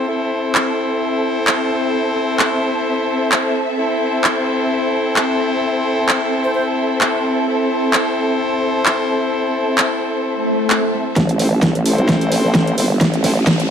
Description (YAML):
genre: bass house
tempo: 130 BPM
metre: 4/4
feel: swing 55% on 16ths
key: A minor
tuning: A4 = 440 Hz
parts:
  - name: bright horn section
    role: stabs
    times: 0.0-13.3 s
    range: C4 to C5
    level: -20 LUFS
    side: left 2 dB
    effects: sidechain pumping, low-pass filter, ping-pong delay
  - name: warm symphonic string section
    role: texture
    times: 0.0-13.7 s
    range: C4 to E5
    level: -22 LUFS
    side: right 1 dB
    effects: sidechain pumping
  - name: big-room dance drum kit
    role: drums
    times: 0.5-13.7 s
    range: handclaps, hi-hat, snare drum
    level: -19 LUFS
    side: equal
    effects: overdrive
  - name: breathy concert flute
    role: melody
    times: 6.4-6.6 s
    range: C5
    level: -25 LUFS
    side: right 1 dB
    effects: ping-pong delay
  - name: swell and riser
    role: sound effects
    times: 10.3-13.7 s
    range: none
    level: -24 LUFS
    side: equal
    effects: none
  - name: vowel-sweep wobble bass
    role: bass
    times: 11.2-13.7 s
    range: G1 to C2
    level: -17 LUFS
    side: right 1 dB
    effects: chorus, overdrive, sidechain pumping, high-pass filter
  - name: electronic kick drum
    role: drums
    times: 11.2-13.6 s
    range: none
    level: -20 LUFS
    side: right 1 dB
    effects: overdrive, high-pass filter on kick, high-pass filter on room
room: moderate plate reverb, RT60 2.1 s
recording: none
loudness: -15 LUFS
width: side -8 dB against mid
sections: 0.0-11.2 A section; 11.2-13.7 B section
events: swell 10.3-11.2; build-up 11.2-13.7; drum fill 11.2-13.7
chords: 0.0 Am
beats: | 0.09 0.55 1.01 1.47 | 1.93 2.39 2.86 3.32 | 3.78 4.24 4.70 5.16 | 5.62 6.09 6.55 7.01 | 7.47 7.93 8.39 8.86 | 9.32 9.78 10.24 10.70 | 11.16 11.62 12.09 12.55 | 13.01 13.47